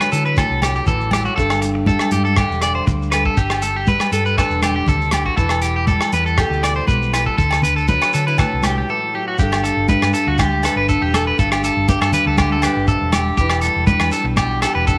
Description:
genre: highlife guitar band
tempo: 120 BPM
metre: 4/4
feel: straight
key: G major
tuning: A4 = 438 Hz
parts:
  - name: flamenco guitar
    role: accompaniment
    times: 0.0-15.0 s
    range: G2 to B4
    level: -26 LUFS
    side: equal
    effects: none
  - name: electric guitar at the edge of break-up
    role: arpeggios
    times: 0.0-15.0 s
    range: F#4 to D5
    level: -22 LUFS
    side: equal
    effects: slapback echo
  - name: warm soul drum kit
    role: drums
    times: 0.0-15.0 s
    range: hi-hat, kick drum, rim click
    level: -25 LUFS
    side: equal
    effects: none
  - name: agogo bells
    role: percussion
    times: 0.0-14.8 s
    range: none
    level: -29 LUFS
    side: equal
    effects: none
  - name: hollow-body short-scale fingered electric bass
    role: bass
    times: 0.1-14.9 s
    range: E1 to D3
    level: -24 LUFS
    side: equal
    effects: none
  - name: shekere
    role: percussion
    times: 0.1-15.0 s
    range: none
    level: -26 LUFS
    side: equal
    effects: none
  - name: congas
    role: percussion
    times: 0.4-14.5 s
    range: none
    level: -26 LUFS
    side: equal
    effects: none
room: light reverb, small room ambience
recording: none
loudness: -17 LUFS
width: mono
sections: 0.0-9.4 A section; 9.4-15.0 B section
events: break 8.9-9.4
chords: 0.0 Dadd9; 1.4 Gsus2; 5.4 Em7; 7.4 Dadd9; 9.4 Gsus2; 13.4 Em7

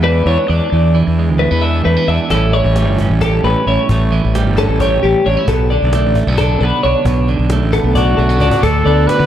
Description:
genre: math rock and midwest emo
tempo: 266 BPM (eighths)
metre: 7/8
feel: straight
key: unclear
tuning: A4 = 440 Hz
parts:
  - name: twelve-string electric guitar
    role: accompaniment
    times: 0.0-9.3 s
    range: D2 to G4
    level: -18 LUFS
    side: right 7 dB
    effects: warbly pitch drift
  - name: twelve-string electric guitar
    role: arpeggios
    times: 0.0-9.3 s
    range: G4 to E5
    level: -17 LUFS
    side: left 3 dB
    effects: spring reverb
  - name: fuzz fingered electric bass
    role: bass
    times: 0.0-9.3 s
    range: G1 to D3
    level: -14 LUFS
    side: equal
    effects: overdrive
  - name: cajon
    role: drums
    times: 2.3-9.2 s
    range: none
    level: -23 LUFS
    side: equal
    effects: none
  - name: warm trumpet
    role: melody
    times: 8.0-9.3 s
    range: F#4 to B4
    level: -16 LUFS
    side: right 1 dB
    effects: slapback echo
room: light reverb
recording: dark, warm production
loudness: -11 LUFS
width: side -10 dB against mid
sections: 0.0-8.6 A section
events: drum fill 8.3-8.6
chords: 0.0 E7; 2.3 A7; 5.5 Bm7; 8.6 D6

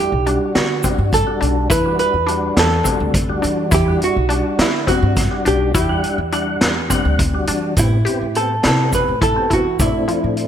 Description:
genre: progressive instrumental, band music in an uneven meter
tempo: 208 BPM (eighths)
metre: 7/8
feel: straight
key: unclear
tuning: A4 = 440 Hz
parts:
  - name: hollow-body jazz guitar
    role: melody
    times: 0.0-10.5 s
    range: E4 to B4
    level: -20 LUFS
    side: right 2 dB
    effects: wide subtle chorus, ping-pong delay
  - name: percussive tonewheel organ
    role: accompaniment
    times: 0.0-10.5 s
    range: G3 to F#5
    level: -24 LUFS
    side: left 2 dB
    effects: chorus vibrato, fast rotary speaker
  - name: analog pluck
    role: arpeggios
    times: 0.0-10.5 s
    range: F3 to G4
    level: -24 LUFS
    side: left 2 dB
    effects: chorus, ping-pong delay
  - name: upright bass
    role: bass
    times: 0.1-10.5 s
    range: B1 to E3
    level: -21 LUFS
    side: equal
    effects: none
  - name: street-band drum kit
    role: drums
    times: 0.3-10.5 s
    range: hi-hat, kick drum, snare drum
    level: -20 LUFS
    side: equal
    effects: gated reverb
  - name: egg shaker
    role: percussion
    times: 0.8-10.1 s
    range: none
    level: -28 LUFS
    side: right 7 dB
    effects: none
room: moderate plate reverb, RT60 2.0 s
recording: bright 1980s-style digital production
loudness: -14 LUFS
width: side -9 dB against mid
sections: 0.0-7.8 A section; 7.8-10.5 B section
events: none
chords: 0.0 Em7; 7.8 Am7; 9.8 Dm9

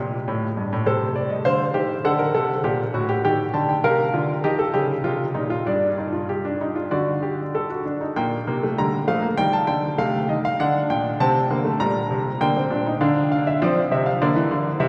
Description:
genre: classical, baroque-style 3-part fugue for grand piano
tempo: 99 BPM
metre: 4/4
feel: straight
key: G minor from 3.2 s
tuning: A4 = 440 Hz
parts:
  - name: clear grand piano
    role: solo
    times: 0.0-14.9 s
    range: G2 to Bb5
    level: -22 LUFS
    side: equal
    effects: none
room: wet cathedral reverb, RT60 5.2 s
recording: recorded in a church or concert hall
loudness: -22 LUFS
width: mono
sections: 0.0-8.2 A section; 8.2-14.9 B section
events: none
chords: 0.0 Eb/Bb; 0.9 Am7b5/C; 2.0 D7; 3.2 Eb; 4.4 Eb7; 5.7 G5; 6.9 D; 8.2 Gm/Bb; 9.4 Am7b5; 10.6 D; 11.8 Gm/Bb; 13.0 Dm; 14.2 C9

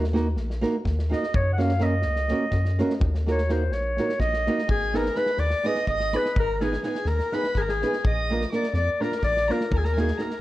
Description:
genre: balkan folk, Balkan wedding band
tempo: 251 BPM (eighths)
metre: 7/8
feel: straight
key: Eb minor, Ab dorian sharp4 from 4.7 s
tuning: A4 = 440 Hz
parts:
  - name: nylon-string guitar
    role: accompaniment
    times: 0.0-10.3 s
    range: Bb3 to Cb5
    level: -28 LUFS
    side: right 2 dB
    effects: none
  - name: rubbery square bass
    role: bass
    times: 0.0-10.1 s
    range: Ab1 to Gb2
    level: -26 LUFS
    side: equal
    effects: none
  - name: natural country drum kit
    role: percussion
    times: 0.0-10.4 s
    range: kick drum, snare drum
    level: -31 LUFS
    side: equal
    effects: none
  - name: warm clarinet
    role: melody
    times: 1.1-10.4 s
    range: Ab4 to Gb5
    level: -26 LUFS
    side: left 1 dB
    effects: none
  - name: rich violin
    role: second line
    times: 4.7-10.4 s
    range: Ab5 to Eb6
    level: -36 LUFS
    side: right 3 dB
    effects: none
room: light reverb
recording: worn, warbling old tape, cassette tape, warbly pitch drift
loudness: -22 LUFS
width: side -16 dB against mid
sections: 0.0-4.7 A section; 4.7-10.4 B section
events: clarinet solo 0.0-4.7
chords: 0.0 Ebm; 1.3 Gb; 3.0 Ebm; 4.7 Abm; 8.0 Bb; 9.7 Ebm

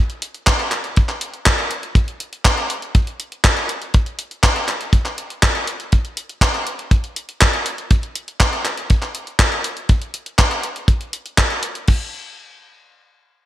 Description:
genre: italo disco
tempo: 121 BPM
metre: 4/4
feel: straight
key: none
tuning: none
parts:
  - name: gated 80s digital drum machine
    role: drums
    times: 0.1-12.0 s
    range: crash cymbal, handclaps, hi-hat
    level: -19 LUFS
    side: equal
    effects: gated reverb
  - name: kick drum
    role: drums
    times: 0.5-12.0 s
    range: none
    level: -14 LUFS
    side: equal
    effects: none
room: light reverb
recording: bright 1980s-style digital production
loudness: -16 LUFS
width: side -14 dB against mid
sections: 0.0-11.9 A section; 11.9-13.5 B section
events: none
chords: none

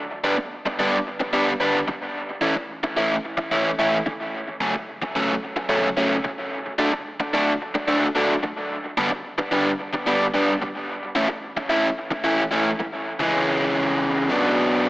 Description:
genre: rock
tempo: 110 BPM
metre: 4/4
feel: straight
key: unclear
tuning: A4 = 440 Hz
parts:
  - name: overdriven electric guitar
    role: solo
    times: 0.2-14.9 s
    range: B2 to E4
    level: -20 LUFS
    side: equal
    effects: dub echo
room: moderate echo chamber reverb, RT60 1.9 s, digital ambience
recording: echo-heavy mix, small speaker sound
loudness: -20 LUFS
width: side -18 dB against mid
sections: 0.0-13.2 A section; 13.2-14.9 B section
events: none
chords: 0.0 G; 2.0 A; 4.5 F#m; 6.7 D; 8.6 G; 10.8 A; 13.2 C#m; 14.3 Bm

